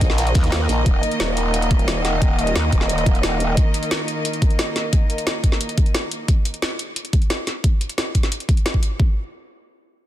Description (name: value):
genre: dark technical drum and bass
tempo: 177 BPM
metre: 4/4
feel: straight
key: unclear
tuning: A4 = 439 Hz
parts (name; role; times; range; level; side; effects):
- warm chamber string section; sustained chords; 0.0-6.2 s; Eb3 to Eb5; -24 LUFS; equal; sidechain pumping
- growl bass; bass; 0.0-3.6 s; Eb1 to Eb2; -21 LUFS; equal; chorus, tube saturation, sidechain pumping
- crunchy breakbeat drum kit; drums; 0.0-0.8 s; hi-hat, snare drum; -34 LUFS; equal; none
- drum and bass drum kit; drums; 0.0-8.9 s; hi-hat, snare drum; -25 LUFS; equal; none
- electronic kick drum; drums; 0.0-9.1 s; none; -17 LUFS; equal; overdrive
room: light reverb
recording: dense, heavily limited modern master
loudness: -17 LUFS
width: side -13 dB against mid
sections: 0.0-9.0 A section; 9.0-10.1 B section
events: none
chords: 0.0 Eb5; 9.0 N.C.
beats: 0.18 0.52 | 0.86 1.20 1.54 1.88 | 2.22 2.56 2.89 3.23 | 3.57 3.91 4.25 4.59 | 4.93 5.27 5.61 5.95 | 6.28 6.62 6.96 7.30 | 7.64 7.98 8.32 8.66 | 9.00